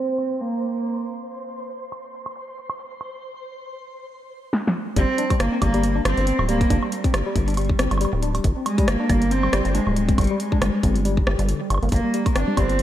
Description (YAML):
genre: IDM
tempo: 138 BPM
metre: 4/4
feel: swing 56% on 16ths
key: G phrygian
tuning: A4 = 440 Hz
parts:
  - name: warm cello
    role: melody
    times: 0.0-1.3, 5.0-12.8 s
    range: G3 to D4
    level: -24 LUFS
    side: right 1 dB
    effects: vintage 12-bit sampler grit, tape echo
  - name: twinkling granular texture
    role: texture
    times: 0.0-3.2 s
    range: C5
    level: -36 LUFS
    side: right 1 dB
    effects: built-in reverb
  - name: electro analog drum machine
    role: drums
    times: 0.1-12.8 s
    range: congas, hi-hat, rim click, snare drum, woodblock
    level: -27 LUFS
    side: right 1 dB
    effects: low-pass filter on hats, small room ambience, low-pass filter on perc, low-pass filter on snare, analog delay
  - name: tine electric piano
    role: arpeggios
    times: 5.0-12.8 s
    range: D3 to G4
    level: -27 LUFS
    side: left 2 dB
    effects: overdrive, medium stereo tremolo, analog delay
  - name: deep acid bass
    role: bass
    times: 5.0-12.8 s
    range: D1 to G1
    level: -22 LUFS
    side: equal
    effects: none
  - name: electronic kick drum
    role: drums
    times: 5.0-12.7 s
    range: none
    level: -21 LUFS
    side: equal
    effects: small room ambience
room: moderate lush hall reverb, RT60 1.9 s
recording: dreamy mix soaked in reverb, low-pass filter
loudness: -19 LUFS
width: side -12 dB against mid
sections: 0.0-5.0 A section; 5.0-12.8 B section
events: filter sweep 0.0-5.0; drum fill 4.5-5.0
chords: 0.0 N.C.; 5.0 Gm; 8.4 N.C.; 11.9 Gm